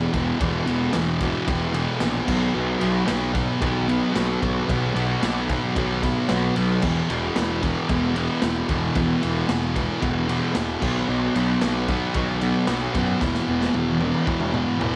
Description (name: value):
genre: garage rock duo or trio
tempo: 112 BPM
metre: 4/4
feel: straight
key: unclear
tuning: A4 = 440 Hz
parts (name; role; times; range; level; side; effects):
- thick fuzz guitar; riff; 0.0-15.0 s; E2 to B3; -25 LUFS; equal; distortion
- fuzz picked electric bass; bass; 0.0-15.0 s; E1 to F#2; -30 LUFS; equal; overdrive
- raw garage drum kit; drums; 0.1-14.9 s; crash cymbal, kick drum, ride cymbal, snare drum, toms; -30 LUFS; equal; none
room: light reverb, small room reverb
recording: none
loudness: -23 LUFS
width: mono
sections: 0.0-15.0 A section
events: drum fill 13.2-15.0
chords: 0.0 E5; 2.3 B5; 6.8 E5; 10.8 B5; 13.2 E5